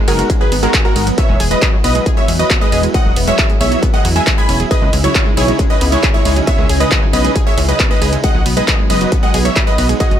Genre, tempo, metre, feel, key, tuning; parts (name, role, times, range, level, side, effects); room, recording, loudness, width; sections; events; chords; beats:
uplifting trance; 136 BPM; 4/4; straight; A4 = 440 Hz
analog string pad; sustained chords; 0.0-10.2 s; C#3 to G#4; -21 LUFS; equal; ensemble chorus, sidechain pumping
analog pluck; arpeggios; 0.0-10.2 s; F#3 to G#4; -22 LUFS; right 3 dB; chorus, sidechain pumping, ping-pong delay
supersaw stab; melody; 0.1-10.2 s; E4 to B5; -19 LUFS; right 1 dB; sidechain pumping, ping-pong delay
warm concert grand piano; second line; 0.1-10.2 s; A#4 to B5; -23 LUFS; equal; sidechain pumping, ping-pong delay
plucky analog bass; bass; 0.1-10.2 s; E1 to E2; -17 LUFS; equal; sidechain pumping
punchy analog drum machine; drums; 0.1-10.2 s; handclaps, hi-hat, ride cymbal; -20 LUFS; equal; sidechain pumping on hats, sidechain pumping on cymbals
electronic kick drum; drums; 0.3-10.1 s; -15 LUFS; equal; distortion
little or no reverb; -11 LUFS; side -10 dB against mid
0.0-10.2 A section
0.0 G#m; 1.2 Esus2; 4.7 C#madd9; 8.2 B
0.30 0.74 | 1.18 1.62 2.06 2.50 | 2.94 3.39 3.83 4.27 | 4.71 5.15 5.59 6.03 | 6.47 6.92 7.36 7.80 | 8.24 8.68 9.12 9.56 | 10.00